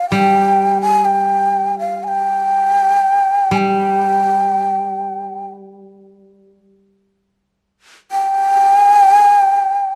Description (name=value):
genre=japanese traditional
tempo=54-63 BPM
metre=4/4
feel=rubato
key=unclear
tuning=A4 = 440 Hz
part: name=breathy mellow long shakuhachi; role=melody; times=0.0-10.0 s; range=F5 to Ab5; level=-15 LUFS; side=equal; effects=none
part: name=koto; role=accompaniment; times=0.1-6.6 s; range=G3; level=-23 LUFS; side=equal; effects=none
room=light reverb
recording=close, detailed microphones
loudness=-14 LUFS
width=mono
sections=0.0-8.2 A section; 8.2-10.0 B section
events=none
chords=none